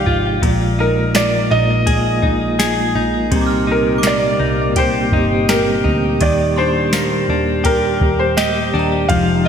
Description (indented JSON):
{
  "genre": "dream pop",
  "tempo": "83 BPM",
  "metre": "4/4",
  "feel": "straight",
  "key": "unclear",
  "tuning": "A4 = 440 Hz",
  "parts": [
    { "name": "felt-muted upright piano", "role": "melody", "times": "0.0-9.5 s", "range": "Bb4 to F5", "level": "-19 LUFS", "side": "right 1 dB", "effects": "ping-pong delay" },
    { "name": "mellow tonewheel organ", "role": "sustained chords", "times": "0.0-9.5 s", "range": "Bb2 to G4", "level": "-20 LUFS", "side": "right 2 dB", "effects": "fast rotary speaker" },
    { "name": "direct-recorded clean electric guitar", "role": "arpeggios", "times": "0.0-9.5 s", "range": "Bb2 to Ab4", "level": "-19 LUFS", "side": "left 4 dB", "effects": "wide subtle chorus, ping-pong delay" },
    { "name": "vintage muted picked electric bass", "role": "bass", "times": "0.0-9.5 s", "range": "F1 to Eb2", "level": "-23 LUFS", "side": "equal", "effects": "none" },
    { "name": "soft vintage rhythm box", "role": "drums", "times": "0.1-9.3 s", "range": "kick drum, ride cymbal, snare drum, tambourine", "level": "-20 LUFS", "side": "equal", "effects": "gated reverb" },
    { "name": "synth chime", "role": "texture", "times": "3.4-9.4 s", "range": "G5 to F6", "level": "-29 LUFS", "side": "right 4 dB", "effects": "ensemble chorus, tremolo, ping-pong delay" }
  ],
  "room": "moderate lush hall reverb, RT60 3.0 s",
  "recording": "bright 1980s-style digital production",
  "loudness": "-13 LUFS",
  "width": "side -8 dB against mid",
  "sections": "0.0-9.5 A section",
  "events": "none",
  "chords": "0.4 Bb7sus4; 3.3 Cm7; 6.2 Ebmaj7",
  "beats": "| 0.43 1.15 1.88 2.60 | 3.32 4.04 4.77 5.49 | 6.21 6.93 7.66 8.38 | 9.10"
}